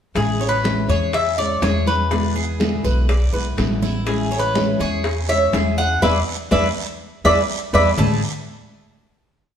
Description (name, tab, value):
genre	latin, Cuban son and guajira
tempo	123 BPM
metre	4/4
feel	straight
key	A major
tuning	A4 = 440 Hz
part	nylon-string guitar	accompaniment	0.1-8.2 s	A2 to E4	-26 LUFS	left 2 dB	none
part	Cuban tres	melody	0.2-8.2 s	G#4 to A5	-20 LUFS	left 2 dB	none
part	upright bass	bass	0.2-8.2 s	A1 to E2	-22 LUFS	equal	none
part	bongos	percussion	0.2-8.1 s	none	-29 LUFS	left 2 dB	none
part	congas	percussion	0.2-8.1 s	none	-25 LUFS	right 1 dB	none
part	guiro	percussion	0.2-8.1 s	none	-34 LUFS	right 5 dB	none
part	Cuban tres	arpeggios	0.4-8.2 s	A3 to D5	-26 LUFS	right 4 dB	none
room	moderate stone room reverb, RT60 1.3 s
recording	band playing live in one room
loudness	-17 LUFS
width	side -8 dB against mid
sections	0.2-8.0 montuno (vamp); 8.0-9.6 final chord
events	band accent 6.0-8.0; drum fill 7.2-8.0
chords	0.2 Amaj7; 2.1 E7; 4.1 Amaj7; 6.0 E7; 8.0 Amaj7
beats	| 0.16 0.65 1.14 1.62 | 2.11 2.60 3.09 3.58 | 4.07 4.56 5.05 5.54 | 6.03 6.51 7.00 7.49 | 7.98